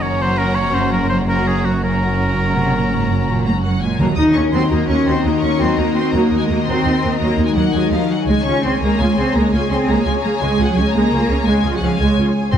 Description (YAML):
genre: cinematic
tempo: 112 BPM (dotted quarters)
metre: 12/8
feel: straight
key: unclear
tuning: A4 = 440 Hz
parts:
  - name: rich studio violin section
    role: melody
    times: 0.0-12.6 s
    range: F5 to Eb6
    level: -27 LUFS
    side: left 4 dB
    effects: none
  - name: clear oboe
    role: second line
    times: 0.0-3.4 s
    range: Gb4 to Db5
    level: -21 LUFS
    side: equal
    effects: none
  - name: warm symphonic violin section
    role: second line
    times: 0.0-12.6 s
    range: Gb4 to Ab5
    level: -26 LUFS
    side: left 2 dB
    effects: none
  - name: warm symphonic viola section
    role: accompaniment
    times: 0.0-12.6 s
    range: Gb3 to Ab4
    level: -23 LUFS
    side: right 2 dB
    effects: none
  - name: concert harp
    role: arpeggios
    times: 0.0-12.6 s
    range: Gb2 to F5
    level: -23 LUFS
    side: left 8 dB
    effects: none
  - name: rich symphonic cello section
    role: bass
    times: 0.0-12.6 s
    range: Gb2 to Eb4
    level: -19 LUFS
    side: right 1 dB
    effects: none
  - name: rich symphonic double bass section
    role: bass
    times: 0.0-12.6 s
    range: Gb1 to Eb2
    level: -21 LUFS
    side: right 2 dB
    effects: none
  - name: timpani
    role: percussion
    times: 4.0-4.5, 12.5-12.6 s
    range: Ab2 to Eb3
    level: -20 LUFS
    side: right 1 dB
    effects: none
room: moderate scoring stage reverb, RT60 1.6 s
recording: none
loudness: -14 LUFS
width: side -9 dB against mid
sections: 0.0-4.0 A section; 4.0-12.6 A section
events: none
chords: 0.0 Gb; 4.0 Ebm; 8.3 Db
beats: 0.21 0.75 1.28 | 1.83 2.37 2.91 3.46 | 4.00 4.54 5.07 5.61 | 6.14 6.68 7.21 7.75 | 8.28 8.81 9.35 9.88 | 10.41 10.94 11.47 12.01 | 12.54